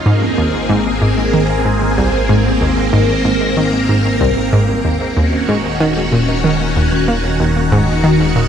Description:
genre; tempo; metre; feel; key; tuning
ambient, sequencer-driven space music; 94 BPM; 4/4; straight; unclear; A4 = 441 Hz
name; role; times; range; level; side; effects
phased string machine; sustained chords; 0.1-8.5 s; Eb3 to Bb4; -16 LUFS; equal; ensemble chorus, phaser
analog pluck; riff; 0.1-8.5 s; C2 to Bb3; -15 LUFS; equal; chorus, tape echo
room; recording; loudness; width
wet huge ambient reverb, RT60 8.0 s; none; -12 LUFS; side -8 dB against mid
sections
0.0-8.5 A section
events
none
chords
0.1 Abadd9; 5.2 Ebm7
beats
| 0.06 0.70 1.33 1.97 | 2.61 3.25 3.89 4.53 | 5.17 5.80 6.44 7.08 | 7.72 8.36

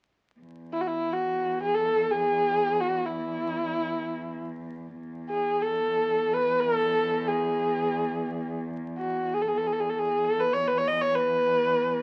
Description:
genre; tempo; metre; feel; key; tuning
turkish; free time; none; none; E makam rast; A4 = 441 Hz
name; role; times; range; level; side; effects
dark cello; drone; 0.4-12.0 s; E2; -37 LUFS; equal; none
rich kamancheh; melody; 0.7-12.0 s; E4 to D#5-21c; -27 LUFS; equal; none
room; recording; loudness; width
light reverb; very old 78 rpm record, vinyl crackle; -27 LUFS; mono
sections
0.4-12.0 A section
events
none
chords
none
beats
free time

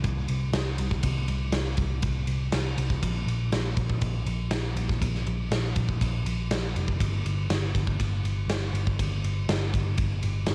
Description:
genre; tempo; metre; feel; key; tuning
rock, shoegaze and dream pop; 121 BPM; 4/4; straight; unclear; A4 = 440 Hz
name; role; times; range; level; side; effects
vintage muted picked electric bass; bass; 0.0-10.5 s; F1 to C2; -30 LUFS; equal; none
big rock drum kit; drums; 0.0-10.5 s; kick drum, ride cymbal, snare drum; -32 LUFS; equal; cassette tape
room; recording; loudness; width
little or no reverb; home recording on cassette; -28 LUFS; mono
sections
0.0-10.5 A section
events
none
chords
none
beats
0.05 0.55 | 1.04 1.54 2.04 2.53 | 3.03 3.53 4.03 4.52 | 5.02 5.52 6.02 6.51 | 7.01 7.51 8.01 8.50 | 9.00 9.49 9.99 10.49

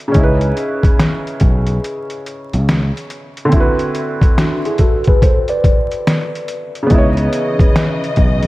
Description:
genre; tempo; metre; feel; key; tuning
lo-fi hip hop; 71 BPM; 4/4; swing 65% on 16ths; unclear; A4 = 439 Hz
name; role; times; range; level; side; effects
felt-muted upright piano; accompaniment; 0.0-8.5 s; C#3 to C#5; -19 LUFS; right 1 dB; cassette tape
picked electric bass; bass; 0.1-8.5 s; B1 to C#2; -16 LUFS; equal; none
trip hop sampler-style drum kit; drums; 0.1-8.5 s; hi-hat, kick drum, snare drum; -14 LUFS; equal; overdrive, vintage 12-bit sampler grit
mellow tine electric piano; second line; 4.4-6.7 s; D4 to D5; -19 LUFS; left 1 dB; medium stereo tremolo, tape echo
dark symphonic string section; sustained chords; 6.9-8.5 s; C#3 to D#5; -22 LUFS; left 2 dB; none
room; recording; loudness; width
light reverb, digital ambience; vinyl crackle; -12 LUFS; side -18 dB against mid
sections
0.0-6.9 A section; 6.9-8.5 A section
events
none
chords
0.1 C#m9; 3.5 D13; 6.9 C#m9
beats
| 0.15 0.99 1.84 2.68 | 3.53 4.37 5.22 6.06 | 6.91 7.75

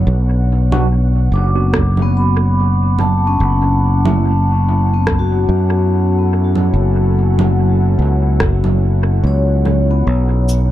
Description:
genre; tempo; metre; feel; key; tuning
ambient dub; 72 BPM; 4/4; swing 57% on 16ths; B minor; A4 = 441 Hz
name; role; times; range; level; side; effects
warbly tape-like pad; sustained chords; 0.0-10.7 s; B2 to F#5; -27 LUFS; right 1 dB; chorus, built-in reverb
vibraphone with medium mallets; arpeggios; 0.0-10.7 s; B3 to D6; -20 LUFS; left 4 dB; analog delay
fingered electric bass; bass; 0.0-10.7 s; F#1 to F#2; -13 LUFS; equal; none
tine electric piano; stabs; 0.7-4.3 s; A3 to F#4; -26 LUFS; right 3 dB; medium stereo tremolo, low-pass filter, dub echo
electronic congas, rim click and shaker; drums; 0.7-10.7 s; none; -23 LUFS; right 4 dB; dub echo
electronic kick drum; drums; 1.7-8.6 s; none; -20 LUFS; equal; overdrive
room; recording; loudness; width
digital ambience; echo-heavy mix; -12 LUFS; side -13 dB against mid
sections
0.0-10.7 A section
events
fade-in on ambient pad 0.0-10.7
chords
0.0 Bm; 3.4 F#m7; 10.1 Bm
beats
| 0.07 0.90 1.74 2.57 | 3.40 4.24 5.07 5.90 | 6.74 7.57 8.40 9.24 | 10.07

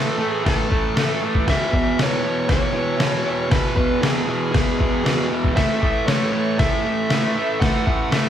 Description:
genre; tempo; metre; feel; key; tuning
garage rock duo or trio; 117 BPM; 4/4; straight; A major; A4 = 440 Hz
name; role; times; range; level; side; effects
fuzz lead guitar; melody; 0.0-8.3 s; G#4 to F#5; -25 LUFS; right 1 dB; distortion
fuzz guitar; riff; 0.0-8.3 s; E2 to A3; -21 LUFS; equal; distortion
trip hop sampler-style drum kit; drums; 0.5-8.2 s; crash cymbal, kick drum, snare drum; -21 LUFS; left 1 dB; none
room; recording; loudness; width
light reverb; band playing live in one room; -17 LUFS; side -10 dB against mid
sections
0.0-8.3 A section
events
none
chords
0.0 A5; 1.5 E; 5.6 A5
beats
0.46 0.96 | 1.47 1.98 2.50 3.00 | 3.52 4.03 4.54 5.05 | 5.56 6.07 6.58 7.09 | 7.61 8.12

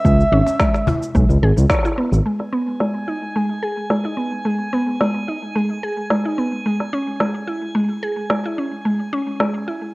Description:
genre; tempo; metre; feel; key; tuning
organic downtempo; 109 BPM; 4/4; swing 54% on 16ths; G# minor; A4 = 441 Hz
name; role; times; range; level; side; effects
breathy flute-like synth lead; melody; 0.0-1.4 s; E5; -21 LUFS; right 1 dB; chorus, cassette tape, tape echo
mallet-like synth pluck; arpeggios; 0.0-9.8 s; G#3 to C#5; -21 LUFS; equal; chorus, tape echo
smooth gliding synth bass; bass; 0.0-2.2 s; G#1 to C#2; -14 LUFS; equal; none
electronic kick drum; drums; 0.0-1.8 s; none; -18 LUFS; equal; overdrive, cassette tape
electronic cabasa and snare drum; drums; 0.1-9.5 s; none; -22 LUFS; equal; overdrive, low-pass filter on perc, cassette tape, low-pass filter on snare
cajon; percussion; 0.5-1.0 s; none; -22 LUFS; left 2 dB; none
drifting glass-harmonics texture; texture; 2.5-9.9 s; G#5; -32 LUFS; right 1 dB; chorus, built-in reverb
room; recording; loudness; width
moderate spring reverb, RT60 1.2 s, digital ambience; home recording on cassette; -17 LUFS; side -22 dB against mid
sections
0.0-2.2 A section; 2.2-9.9 B section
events
band accent 1.7; filter sweep on synth pluck 2.2-9.9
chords
0.0 C#m7; 2.2 G#m; 6.7 C#m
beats
| 0.05 0.60 1.15 1.70 | 2.25 2.80 3.35 3.90 | 4.45 5.00 5.55 6.10 | 6.65 7.20 7.75 8.30 | 8.85 9.40

